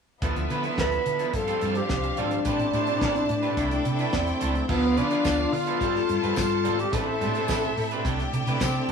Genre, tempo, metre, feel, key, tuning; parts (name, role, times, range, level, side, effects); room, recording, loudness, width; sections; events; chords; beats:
disco; 107 BPM; 4/4; straight; D dorian; A4 = 440 Hz
warm studio string section; second line; 0.2-8.9 s; B3 to A5; -31 LUFS; left 2 dB
electric guitar at the edge of break-up; accompaniment; 0.2-8.9 s; F3 to C5; -31 LUFS; right 4 dB
bright tonewheel organ; sustained chords; 0.2-8.9 s; C3 to G4; -36 LUFS; right 1 dB; chorus vibrato, slow rotary speaker
hollow-body short-scale fingered electric bass; bass; 0.2-8.9 s; G1 to D3; -30 LUFS; right 1 dB
damped 70s drum kit; drums; 0.2-8.9 s; crash cymbal, hi-hat, kick drum, snare drum; -31 LUFS; equal
breathy tenor saxophone; melody; 0.8-8.9 s; B3 to B4; -26 LUFS; left 2 dB
tambourine; percussion; 5.2-8.7 s; -40 LUFS; left 5 dB
moderate studio reverb, RT60 0.5 s; band playing live in one room; -23 LUFS; side -6 dB against mid
0.2-4.7 A section; 4.7-8.9 B section
0.2 Dm69; 1.3 G9sus4; 2.5 Am11; 3.6 C69; 4.7 Dm69; 5.8 G9sus4; 6.9 Am11; 8.0 C69
| 0.22 0.78 1.34 1.90 | 2.46 3.02 3.58 4.13 | 4.69 5.25 5.81 6.37 | 6.93 7.49 8.04 8.60